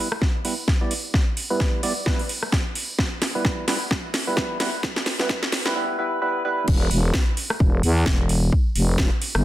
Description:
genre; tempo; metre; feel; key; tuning
bass house; 130 BPM; 4/4; swing 57% on 16ths; E phrygian; A4 = 440 Hz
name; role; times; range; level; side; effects
percussive organ stab; stabs; 0.0-6.7 s; G3 to D5; -26 LUFS; right 1 dB; lush chorus, cassette tape, sidechain pumping, digital delay
house drum kit; drums; 0.1-9.4 s; crash cymbal, hi-hat, rim click, snare drum; -25 LUFS; equal; none
electronic kick drum; drums; 0.2-9.1 s; none; -22 LUFS; equal; none
growling FM bass; bass; 6.7-9.4 s; E1 to E2; -20 LUFS; equal; sidechain pumping
room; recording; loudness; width
light reverb; dense, heavily limited modern master, high-pass filter; -20 LUFS; side -14 dB against mid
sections
0.0-6.7 A section; 6.7-9.4 B section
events
build-up 0.0-6.7; drum fill 0.0-5.8; filter sweep on synth stab 0.0-6.7; drop 6.7-9.4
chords
0.0 Em; 6.7 N.C.

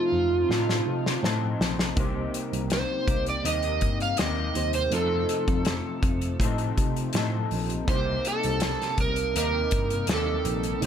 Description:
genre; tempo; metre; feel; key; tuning
indie pop, bedroom pop; 81 BPM; 4/4; straight; C dorian; A4 = 441 Hz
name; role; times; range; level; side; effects
overdriven slide guitar; melody; 0.0-10.8 s; F4 to F5; -27 LUFS; right 3 dB; wide subtle chorus, ping-pong delay
electric guitar through a small old amp; accompaniment; 0.0-10.9 s; C3 to A4; -34 LUFS; left 4 dB; analog chorus, warbly pitch drift
reed electric piano; accompaniment; 0.0-10.9 s; A3 to C5; -39 LUFS; right 5 dB; fast tremolo, cassette tape
phased analog pad; sustained chords; 0.0-10.9 s; C3 to Eb4; -35 LUFS; left 1 dB; phaser, chorus
tine electric piano; bass; 0.1-10.9 s; Bb1 to C3; -30 LUFS; equal; overdrive, fast stereo tremolo
loose indie drum kit; drums; 0.5-10.9 s; hi-hat, kick drum, snare drum; -28 LUFS; left 1 dB; none
room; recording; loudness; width
light reverb; none; -23 LUFS; side -8 dB against mid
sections
0.0-10.9 A section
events
drum fill 0.5-2.0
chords
0.0 F7; 2.0 Cm7; 4.9 F7; 7.9 Cm7

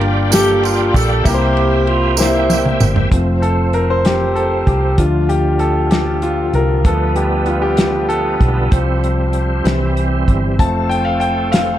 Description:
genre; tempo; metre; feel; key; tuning
slow gospel; 64 BPM (dotted quarters); 6/8; straight; F major; A4 = 440 Hz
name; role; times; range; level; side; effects
mellow saxophone section; melody; 0.0-3.1 s; G3 to A4; -18 LUFS; right 1 dB; none
clear concert grand piano; accompaniment; 0.0-11.8 s; G2 to A5; -17 LUFS; left 1 dB; none
bright tonewheel organ; sustained chords; 0.0-11.8 s; D3 to G5; -22 LUFS; right 2 dB; slow rotary speaker, chorus vibrato
hollow-body short-scale fingered electric bass; bass; 0.0-11.8 s; F1 to D2; -18 LUFS; equal; none
warm soul drum kit; drums; 0.0-11.7 s; hi-hat, kick drum, ride cymbal, snare drum, toms; -16 LUFS; equal; none
tambourine; percussion; 0.3-3.1 s; none; -24 LUFS; right 11 dB; none
room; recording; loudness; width
light reverb, studio reverb; none; -13 LUFS; side -12 dB against mid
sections
0.0-3.1 A section; 3.1-11.8 B section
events
drum fill 2.2-3.1; grand piano solo 3.1-11.8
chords
0.0 Gm7; 1.3 C7; 3.1 F; 5.0 Dm; 6.9 G7/D; 8.7 Csus4; 9.7 C; 10.6 F

